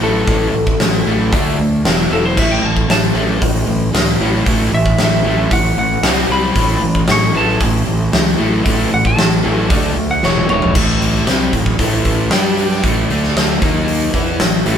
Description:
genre	hard rock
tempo	115 BPM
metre	4/4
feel	straight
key	unclear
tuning	A4 = 440 Hz
part	lightly driven lead guitar	melody	0.0-10.7 s	A4 to C#6	-19 LUFS	equal	none
part	crunchy overdriven guitar	riff	0.0-14.8 s	E2 to G4	-18 LUFS	equal	none
part	fuzz fingered electric bass	bass	0.0-14.8 s	E1 to G2	-19 LUFS	right 1 dB	overdrive
part	big rock drum kit	drums	0.3-14.8 s	crash cymbal, hi-hat, kick drum, snare drum, toms	-16 LUFS	left 1 dB	none
room	light reverb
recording	band playing live in one room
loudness	-12 LUFS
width	side -8 dB against mid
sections	0.0-10.7 A section; 10.7-14.8 B section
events	lead electric guitar solo 0.0-10.7; drum fill 10.2-10.7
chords	0.0 A5; 1.3 D5; 1.8 E5; 2.4 A5; 6.0 C5; 6.6 A5; 9.7 D5; 10.2 E5; 10.7 A5; 12.3 G5; 12.8 A5; 13.1 D5; 13.6 D#5; 14.1 A5

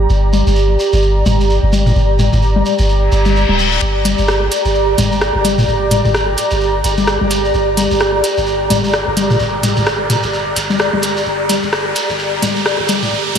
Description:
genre	minimal techno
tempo	129 BPM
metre	4/4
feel	swing 59% on 16ths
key	G minor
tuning	A4 = 443 Hz
part	punchy sub bass	bass	0.0-13.4 s	D1 to G1	-18 LUFS	equal	none
part	airy breathy pad	texture	0.0-13.4 s	G4 to Bb5	-17 LUFS	right 1 dB	chorus, phaser
part	shekere	percussion	0.1-13.4 s	none	-24 LUFS	right 2 dB	none
part	electronic congas and toms	percussion	0.3-13.4 s	none	-18 LUFS	left 3 dB	none
part	reverse cymbal and riser	sound effects	3.1-13.4 s	none	-24 LUFS	equal	none
part	garage drum kit	drums	4.1-13.4 s	hi-hat, rim click	-20 LUFS	equal	high-pass filter on hats, high-pass filter on snare, high-pass filter on room
room	wet huge ambient reverb, RT60 7.1 s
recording	dreamy mix soaked in reverb, high-pass filter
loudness	-12 LUFS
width	side -8 dB against mid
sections	0.0-3.8 A section; 3.8-13.4 B section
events	reverse cymbal 3.1-3.8; build-up 3.8-13.4; riser 3.8-13.4; filter sweep 3.8-13.4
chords	0.0 Gm

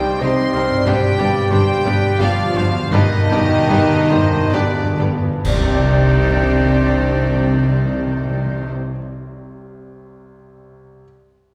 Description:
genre	cinematic, emotional film score for orchestra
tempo	64-92 BPM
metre	3/4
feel	rubato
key	C minor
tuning	A4 = 440 Hz
part	warm studio violin section	melody	0.0-8.7 s	C5 to C6	-28 LUFS	equal	none
part	warm clarinet	second line	0.0-8.7 s	D4 to C5	-26 LUFS	equal	none
part	warm oboe	second line	0.0-8.7 s	Eb4 to Eb5	-30 LUFS	equal	none
part	bright grand piano	accompaniment	0.0-11.0 s	C2 to G5	-28 LUFS	equal	none
part	warm French horn section	sustained chords	0.0-8.7 s	D3 to C4	-25 LUFS	equal	none
part	concert harp	arpeggios	0.0-9.3 s	G2 to G5	-29 LUFS	equal	none
part	clear studio violin section	second line	0.2-8.7 s	D4 to G4	-32 LUFS	equal	none
part	warm studio viola section	accompaniment	0.2-8.7 s	Eb3 to D4	-31 LUFS	equal	none
part	dark studio double bass section	bass	0.2-8.7 s	G1 to C2	-25 LUFS	equal	none
part	warm studio cello section	bass	0.2-8.7 s	G2 to C3	-27 LUFS	equal	none
part	timpani	percussion	0.9-8.7 s	G2 to C3	-24 LUFS	equal	none
part	clash cymbals and concert bass drum	percussion	5.4-7.3 s	none	-29 LUFS	equal	none
part	bright large flute ensemble	second line	5.5-8.7 s	D5	-30 LUFS	equal	none
room	wet scoring stage reverb, RT60 1.7 s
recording	heard from further back in the room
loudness	-16 LUFS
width	mono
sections	0.0-5.5 A section; 5.5-11.0 B section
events	slowing down 0.0-5.5; timpani fill 0.9-5.5; band accent 5.5-6.4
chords	0.0 Cmadd9; 0.9 G; 5.5 Cmadd9

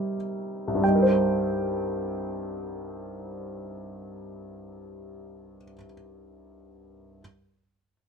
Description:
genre	classical, lyrical solo piano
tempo	47 BPM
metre	3/4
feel	rubato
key	C minor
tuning	A4 = 439 Hz
part	clear upright piano	solo	0.0-7.2 s	C2 to G5	-26 LUFS	equal	none
room	light reverb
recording	minimal, uncompressed stereo recording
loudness	-24 LUFS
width	side -6 dB against mid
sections	0.8-4.7 A section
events	none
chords	0.0 Cm7

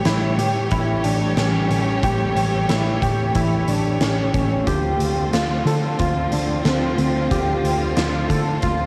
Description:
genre	dream pop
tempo	91 BPM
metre	4/4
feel	straight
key	D minor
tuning	A4 = 441 Hz
part	clear chamber string section	sustained chords	0.0-8.9 s	D3 to C#5	-26 LUFS	equal	cassette tape
part	clean electric guitar	arpeggios	0.0-8.9 s	C4 to A4	-26 LUFS	equal	analog chorus, cassette tape, tape echo
part	vintage muted picked electric bass	bass	0.1-8.9 s	A1 to D3	-26 LUFS	equal	none
part	oversized low-tuned drum kit	drums	0.1-8.8 s	hi-hat, kick drum, snare drum	-27 LUFS	equal	none
room	moderate studio reverb, RT60 0.6 s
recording	home recording on cassette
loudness	-20 LUFS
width	mono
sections	0.0-8.9 A section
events	none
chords	0.0 A7; 4.7 Dm7

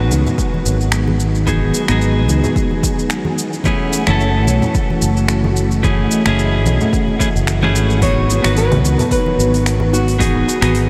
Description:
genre	sunset chillout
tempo	110 BPM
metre	4/4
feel	swing 55% on 16ths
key	unclear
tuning	A4 = 440 Hz
part	clean electric guitar	accompaniment	0.0-10.9 s	A3 to B4	-22 LUFS	equal	analog delay
part	soft string machine	sustained chords	0.0-10.9 s	D#3 to D#5	-24 LUFS	equal	phaser, ensemble chorus
part	fretless electric bass	bass	0.0-10.9 s	F#1 to C#2	-18 LUFS	equal	none
part	deep house drum kit	drums	0.1-10.9 s	congas, finger snaps, hi-hat, shaker	-26 LUFS	equal	overdrive
part	congas	percussion	0.1-10.7 s	none	-27 LUFS	equal	none
part	electronic kick drum	drums	0.4-10.3 s	none	-22 LUFS	equal	overdrive
part	nylon-string guitar	melody	8.0-10.9 s	F#4 to C#5	-22 LUFS	equal	analog delay
room	moderate huge ambient reverb, RT60 8.1 s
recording	dreamy mix soaked in reverb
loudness	-15 LUFS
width	mono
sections	0.0-10.9 A section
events	none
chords	0.0 G#m7; 3.4 F#m9; 8.0 G#m7

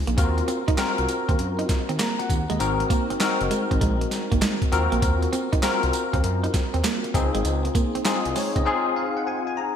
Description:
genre	R&B, new jack swing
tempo	99 BPM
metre	4/4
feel	swing 66% on 16ths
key	Eb dorian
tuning	A4 = 440 Hz
part	bell-like tine electric piano	accompaniment	0.0-9.8 s	C4 to Bb5	-25 LUFS	left 4 dB	ensemble chorus
part	smooth synth bass	bass	0.0-8.6 s	Gb1 to Gb2	-26 LUFS	equal	none
part	clean electric guitar	riff	0.1-8.6 s	Ab3 to Eb4	-29 LUFS	right 5 dB	lush chorus
part	boom bap sampler-style drum kit	drums	0.1-8.7 s	handclaps, hi-hat, kick drum, snare drum, tambourine	-25 LUFS	right 1 dB	none
room	moderate lush hall reverb, RT60 1.6 s, digital ambience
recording	bright 1980s-style digital production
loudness	-21 LUFS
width	side -8 dB against mid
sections	0.0-9.8 A section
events	tine electric piano fill 8.1-9.8; silent gap 8.7-9.8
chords	0.2 Ebm69; 2.6 Ab7; 4.7 Ebm69; 7.1 Dbmaj9; 8.7 Ab13/C

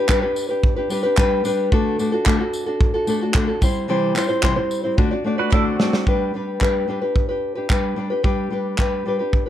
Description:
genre	acoustic pop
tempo	110 BPM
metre	4/4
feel	straight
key	G major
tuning	A4 = 440 Hz
part	nylon-string guitar	accompaniment	0.0-9.5 s	C3 to D5	-20 LUFS	left 1 dB	none
part	natural country drum kit	drums	0.1-9.5 s	handclaps, kick drum, snare drum, tambourine	-20 LUFS	equal	none
part	group handclap	percussion	0.1-5.6 s	none	-33 LUFS	right 8 dB	none
part	pedal steel guitar	second line	5.4-6.1 s	C4 to B4	-25 LUFS	right 7 dB	none
room	light reverb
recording	dark, warm production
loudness	-18 LUFS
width	side -11 dB against mid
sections	0.0-6.1 A section; 6.1-9.5 B section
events	drum fill 5.0-6.1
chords	0.0 G; 1.7 D; 3.6 C; 5.0 D; 6.1 G

